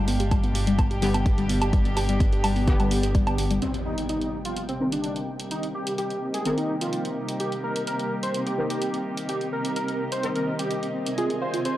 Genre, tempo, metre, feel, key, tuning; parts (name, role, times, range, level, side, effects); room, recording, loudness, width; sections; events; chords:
melodic techno; 127 BPM; 4/4; straight; C minor; A4 = 441 Hz
dark studio string section; sustained chords; 0.0-11.8 s; B2 to Ab5; -34 LUFS; equal; sidechain pumping, low-pass filter
woody wave-folded pluck; arpeggios; 0.0-3.6, 11.2-11.8 s; G3 to F5; -28 LUFS; left 1 dB; chorus, cassette tape, sidechain pumping, tape echo
round analog bass; bass; 0.0-3.6 s; G1; -26 LUFS; equal; sidechain pumping
granular cloud pad; texture; 0.0-11.8 s; B3 to G5; -33 LUFS; right 1 dB; built-in reverb, sidechain pumping
electronic hi-hat and woodblock; drums; 0.1-11.7 s; -33 LUFS; right 2 dB; overdrive
electronic kick drum; drums; 0.3-3.2 s; -22 LUFS; equal
synth brass stab; stabs; 1.0-11.2 s; D3 to Bb4; -32 LUFS; left 1 dB; chorus, sidechain pumping, tape echo
wide unison lead; melody; 3.6-11.8 s; C4 to C5; -29 LUFS; equal; sidechain pumping, tape echo
overtone-sweeping drone; drone; 5.3-11.8 s; C3 to G3; -40 LUFS; left 1 dB
impact; sound effects; 3.6-5.5 s; -36 LUFS; equal
light reverb, digital ambience; dry, gritty hardware recording; -23 LUFS; side -14 dB against mid
0.0-3.6 A section; 3.6-11.8 B section
impact 3.6-5.5; filter sweep on analog synth lead 3.6-11.8; filter sweep on synth stab 3.6-11.8; filter sweep on string section 3.6-11.8
0.0 G; 3.6 Cm7; 11.2 Fm7